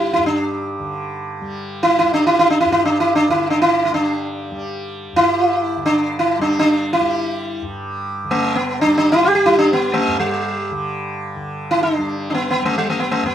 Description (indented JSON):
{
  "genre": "indian classical, Hindustani",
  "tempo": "free time",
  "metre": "none",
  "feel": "none",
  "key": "G raga bhupali",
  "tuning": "A4 = 441 Hz",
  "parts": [
    { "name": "sitar", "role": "melody", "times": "0.0-13.3 s", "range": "G3 to G4", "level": "-16 LUFS", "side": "equal", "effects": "none" },
    { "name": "tanpura", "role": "drone", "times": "0.0-13.3 s", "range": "G2 to G3", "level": "-26 LUFS", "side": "equal", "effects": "none" }
  ],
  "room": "light reverb",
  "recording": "minimal, uncompressed stereo recording",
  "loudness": "-15 LUFS",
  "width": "side -10 dB against mid",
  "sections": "0.0-11.4 A section; 11.4-13.3 A section",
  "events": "none",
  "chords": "none",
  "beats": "free time"
}